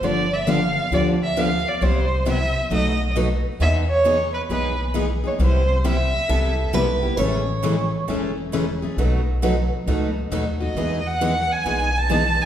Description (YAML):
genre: acoustic string swing (jazz manouche)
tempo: 134 BPM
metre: 4/4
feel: swing 65% on 8ths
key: E major from 3.6 s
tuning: A4 = 438 Hz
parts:
  - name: warm violin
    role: melody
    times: 0.0-6.7, 10.6-12.5 s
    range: B4 to A5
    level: -22 LUFS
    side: right 1 dB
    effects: none
  - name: picked steel-string acoustic guitar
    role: accompaniment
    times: 0.0-12.5 s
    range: B2 to G#4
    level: -25 LUFS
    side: left 2 dB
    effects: none
  - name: picked steel-string acoustic guitar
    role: accompaniment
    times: 0.0-12.2 s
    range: B2 to B4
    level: -28 LUFS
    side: right 3 dB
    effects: none
  - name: upright bass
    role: bass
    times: 0.0-12.4 s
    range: E1 to E2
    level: -23 LUFS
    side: equal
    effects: none
  - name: picked steel-string acoustic guitar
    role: second line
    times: 6.3-8.0 s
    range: A4 to C#5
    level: -25 LUFS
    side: right 1 dB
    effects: none
room: wet recital hall reverb, RT60 1.5 s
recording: recorded in a church or concert hall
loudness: -19 LUFS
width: side -10 dB against mid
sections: 0.0-3.6 A section; 3.6-12.5 B section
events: none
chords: 0.0 G7; 1.8 Cmaj7; 2.7 B7; 3.6 Emaj7; 5.4 Cmaj7; 7.2 Amaj7; 9.0 B7; 10.8 Emaj7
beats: | 0.02 0.47 0.92 1.37 | 1.81 2.26 2.71 3.16 | 3.60 4.05 4.50 4.95 | 5.39 5.84 6.29 6.74 | 7.18 7.63 8.08 8.53 | 8.97 9.42 9.87 10.31 | 10.76 11.21 11.65 12.10